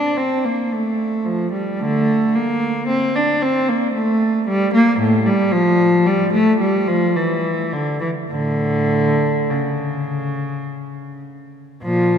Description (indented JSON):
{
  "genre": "classical, baroque-style suite movement for unaccompanied cello",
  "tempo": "50-57 BPM",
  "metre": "3/4",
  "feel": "rubato",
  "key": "D minor",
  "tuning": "A4 = 441 Hz",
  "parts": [
    { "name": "dark cello", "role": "solo", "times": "0.0-12.2 s", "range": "A2 to D4", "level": "-16 LUFS", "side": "equal", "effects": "none" }
  ],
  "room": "wet church reverb, RT60 3.9 s",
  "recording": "none",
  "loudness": "-16 LUFS",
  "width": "side -8 dB against mid",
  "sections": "0.0-11.8 A section",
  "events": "none",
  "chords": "none"
}